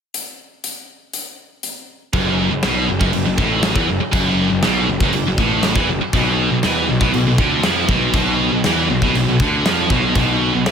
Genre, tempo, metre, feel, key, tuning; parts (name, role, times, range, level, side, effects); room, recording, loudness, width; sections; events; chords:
heavy metal; 120 BPM; 4/4; straight; F# minor; A4 = 440 Hz
big rock drum kit; drums; 0.1-10.7 s; crash cymbal, hi-hat, kick drum, snare drum; -20 LUFS; equal
scooped high-gain guitar; riff; 2.1-10.7 s; F#2 to E#3; -17 LUFS; equal; distortion
fuzz picked electric bass; bass; 2.1-10.7 s; F#1 to E#2; -22 LUFS; equal; overdrive
small room ambience; -14 LUFS; side -7 dB against mid
0.2-2.1 A section; 2.1-10.7 B section
0.2 N.C.; 2.1 F#m; 6.1 Bmadd11